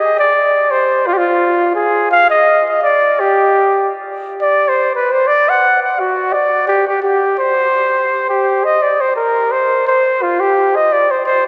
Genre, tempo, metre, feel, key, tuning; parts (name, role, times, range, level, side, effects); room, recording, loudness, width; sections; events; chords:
mexican folk; 170 BPM; 3/4; swing 54% on 8ths; C harmonic minor; A4 = 440 Hz
mellow trumpet; solo; 0.0-11.5 s; F4 to F#5; -14 LUFS; equal
wet cathedral reverb, RT60 5.3 s; in a vast, echoing space; -14 LUFS; mono
0.0-8.5 A section; 8.5-11.5 B section